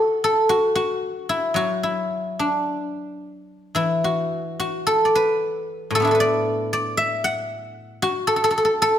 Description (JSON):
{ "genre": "chinese traditional, Chinese solo plucked strings", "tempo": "56 BPM", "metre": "2/4", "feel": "uneven beats, rubato", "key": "D gong mode", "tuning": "A4 = 440 Hz", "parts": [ { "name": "guzheng", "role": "solo", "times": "0.0-9.0 s", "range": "A2 to F#5", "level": "-19 LUFS", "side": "equal", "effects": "none" } ], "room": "moderate recital hall reverb, RT60 1.6 s", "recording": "none", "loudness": "-19 LUFS", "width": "side -10 dB against mid", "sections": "0.0-9.0 A section", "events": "none", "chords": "none" }